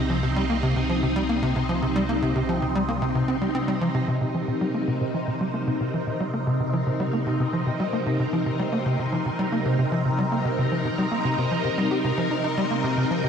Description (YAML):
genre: ambient, sequencer-driven space music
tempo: 113 BPM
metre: 4/4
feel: straight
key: C minor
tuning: A4 = 440 Hz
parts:
  - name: phased string machine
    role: sustained chords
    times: 0.0-13.3 s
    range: C3 to Bb4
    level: -25 LUFS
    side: equal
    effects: ensemble chorus, phaser, shimmer reverb
  - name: tight sequencer bass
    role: riff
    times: 0.0-13.3 s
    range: C3 to G4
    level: -25 LUFS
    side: equal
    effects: lush chorus, analog delay
  - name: analog drone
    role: bass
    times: 0.0-4.1 s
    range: C2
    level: -31 LUFS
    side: equal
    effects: chorus
room: wet plate reverb, RT60 3.4 s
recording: none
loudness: -22 LUFS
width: side -7 dB against mid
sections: 0.0-4.1 A section; 4.1-13.3 B section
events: none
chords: 0.0 Cm7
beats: 0.36 0.90 1.43 | 1.96 2.49 3.02 3.55 | 4.08 4.61 5.14 5.67 | 6.21 6.74 7.27 7.80 | 8.33 8.86 9.39 9.92 | 10.45 10.98 11.52 12.04 | 12.58 13.11